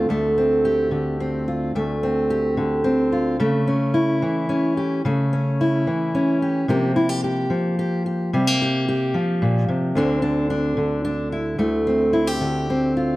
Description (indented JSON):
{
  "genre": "folk",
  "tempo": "110 BPM",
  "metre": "3/4",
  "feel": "straight",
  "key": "D minor",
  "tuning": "A4 = 440 Hz",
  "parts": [
    { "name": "fingerpicked steel-string acoustic guitar", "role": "solo", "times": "0.0-13.2 s", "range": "D2 to G4", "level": "-19 LUFS", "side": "equal", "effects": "none" }
  ],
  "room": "moderate recital hall reverb, RT60 1.6 s",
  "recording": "dark, warm production",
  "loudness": "-19 LUFS",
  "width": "side -18 dB against mid",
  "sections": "0.1-13.2 A section",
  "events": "none",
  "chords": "0.1 Dm7; 3.4 A/C#; 6.7 C7sus4; 10.0 Cadd9/D; 11.6 Dm7"
}